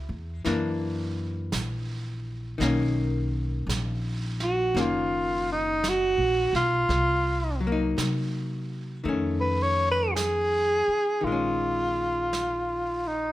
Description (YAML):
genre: jazz ballad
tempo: 56 BPM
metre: 4/4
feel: swing 68% on 8ths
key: Bb minor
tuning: A4 = 442 Hz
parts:
  - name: archtop guitar, miked and amplified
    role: accompaniment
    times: 0.0-13.3 s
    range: D#3 to Fb4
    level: -31 LUFS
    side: left 3 dB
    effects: none
  - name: upright bass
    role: bass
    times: 0.0-13.3 s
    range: F#1 to C3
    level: -30 LUFS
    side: equal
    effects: none
  - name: vintage brush drum kit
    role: drums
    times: 0.5-13.3 s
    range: brushed snare drum, hi-hat, snare drum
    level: -36 LUFS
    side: right 4 dB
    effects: none
  - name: breathy alto saxophone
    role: melody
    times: 4.4-13.3 s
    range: Eb4 to C#5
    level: -24 LUFS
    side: right 1 dB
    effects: plate reverb
room: light reverb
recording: none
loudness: -24 LUFS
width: side -15 dB against mid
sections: 0.0-11.2 A section; 11.2-13.3 B section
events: alto saxophone solo 0.0-11.2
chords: 0.4 Gbaug7; 2.6 Bmaj9; 6.9 Cm7b5; 9.1 F7alt; 11.2 Bbm7